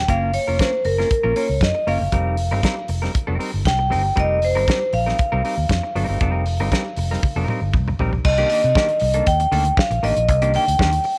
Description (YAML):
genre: disco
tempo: 118 BPM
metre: 4/4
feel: straight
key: unclear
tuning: A4 = 435 Hz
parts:
  - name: vibraphone with medium hard mallets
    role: melody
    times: 0.0-11.2 s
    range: Bb4 to G5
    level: -23 LUFS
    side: equal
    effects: none
  - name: fingered electric bass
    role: bass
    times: 0.0-11.0 s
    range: F1 to C3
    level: -24 LUFS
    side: equal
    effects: none
  - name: semi-hollow electric guitar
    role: accompaniment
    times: 0.1-11.1 s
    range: Eb3 to Bb4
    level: -29 LUFS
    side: equal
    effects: none
  - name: damped 70s drum kit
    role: drums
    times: 0.1-11.2 s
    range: crash cymbal, hi-hat, kick drum, snare drum, toms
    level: -25 LUFS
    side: equal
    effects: none
room: light reverb, small room ambience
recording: none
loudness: -19 LUFS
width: mono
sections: 0.1-8.2 A section; 8.2-11.2 B section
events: drum fill 7.2-8.2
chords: 0.1 Gbmaj7; 2.1 F9sus4; 8.2 Cm9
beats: | 0.08 0.59 1.10 1.61 | 2.12 2.63 3.15 3.65 | 4.17 4.68 5.19 5.70 | 6.21 6.72 7.23 7.74 | 8.25 8.76 9.27 9.78 | 10.28 10.79